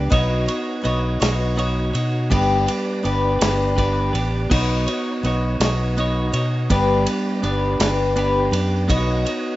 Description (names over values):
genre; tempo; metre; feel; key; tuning
folk rock and heartland rock; 55 BPM (dotted quarters); 6/8; straight; unclear; A4 = 440 Hz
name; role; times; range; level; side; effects
picked twelve-string acoustic guitar; accompaniment; 0.0-9.6 s; G3 to C#5; -24 LUFS; left 4 dB; none
tonewheel organ; sustained chords; 0.0-9.6 s; D4 to D5; -34 LUFS; right 1 dB; slow rotary speaker, overdrive, chorus vibrato
twelve-string electric guitar; riff; 0.0-9.6 s; G3 to C#5; -24 LUFS; right 2 dB; none
fingered electric bass; bass; 0.0-9.2 s; G1 to B2; -22 LUFS; equal; none
loose indie drum kit; drums; 0.1-9.4 s; crash cymbal, kick drum, ride cymbal, snare drum; -26 LUFS; equal; none
room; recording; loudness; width
moderate studio reverb, RT60 0.6 s; rough home demo mix, nothing above 7.8 kHz; -18 LUFS; side -16 dB against mid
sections
0.0-9.6 A section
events
none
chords
0.1 Badd9; 2.3 G; 4.5 Badd9; 6.7 G; 8.9 Badd9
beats
| 0.12 1.22 | 2.31 3.41 | 4.51 5.61 | 6.71 7.80 | 8.90